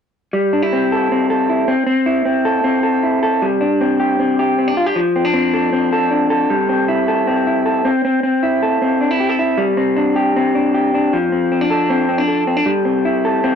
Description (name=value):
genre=indie pop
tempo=156 BPM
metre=4/4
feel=straight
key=C major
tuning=A4 = 441 Hz
part: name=electric guitar through a small old amp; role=solo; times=0.3-13.6 s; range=F3 to A4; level=-14 LUFS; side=left 1 dB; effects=vibrato effect
room=little or no reverb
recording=dry, close 1970s-style studio recording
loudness=-14 LUFS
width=side -7 dB against mid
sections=0.3-6.5 A section; 6.5-13.6 B section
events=none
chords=0.3 C6; 3.4 Gsus4; 5.0 Dm7; 6.5 C6; 9.6 Gsus4; 11.1 Dm7; 12.7 C6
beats=| 0.33 0.71 1.10 1.48 | 1.87 2.25 2.64 3.03 | 3.41 3.80 4.18 4.57 | 4.96 5.34 5.73 6.12 | 6.50 6.89 7.27 7.66 | 8.04 8.43 8.81 9.20 | 9.59 9.97 10.36 10.74 | 11.13 11.51 11.90 12.29 | 12.67 13.06 13.44